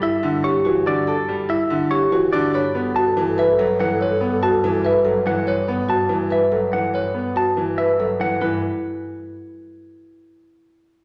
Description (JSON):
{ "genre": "classical, minimalist pattern music", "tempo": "286 BPM (eighths)", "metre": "7/8", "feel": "straight", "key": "unclear", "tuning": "A4 = 441 Hz", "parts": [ { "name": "clean electric guitar", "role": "melody", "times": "0.0-8.6 s", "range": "A4 to A5", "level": "-27 LUFS", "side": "equal", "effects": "none" }, { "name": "clear concert grand piano", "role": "accompaniment", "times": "0.0-8.6 s", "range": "D3 to B3", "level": "-27 LUFS", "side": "equal", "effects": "none" }, { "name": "marimba with soft mallets", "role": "arpeggios", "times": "0.0-8.6 s", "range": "E4 to C#5", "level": "-23 LUFS", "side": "equal", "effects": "none" }, { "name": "rich double bass", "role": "bass", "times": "0.0-8.6 s", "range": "G2", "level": "-32 LUFS", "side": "equal", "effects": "none" }, { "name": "mellow wooden-headed alto flute", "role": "second line", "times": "2.5-5.2 s", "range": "A4", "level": "-30 LUFS", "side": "equal", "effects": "none" } ], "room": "wet recital hall reverb, RT60 1.5 s", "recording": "none", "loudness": "-20 LUFS", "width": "mono", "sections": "0.0-8.4 A section; 8.4-9.9 B section", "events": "none", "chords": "0.0 Gmaj7(no3); 2.5 F#m7/G; 8.4 N.C.", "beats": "0.02 0.23 0.44 0.65 0.86 | 1.07 1.28 1.49 1.70 1.91 2.12 2.33 | 2.54 2.75 2.96 3.17 3.38 3.59 3.80 | 4.01 4.22 4.43 4.64 4.85 5.06 5.27 | 5.48 5.68 5.89 6.11 6.32 6.53 6.73 | 6.94 7.15 7.36 7.57 7.78 7.99 8.20 | 8.41" }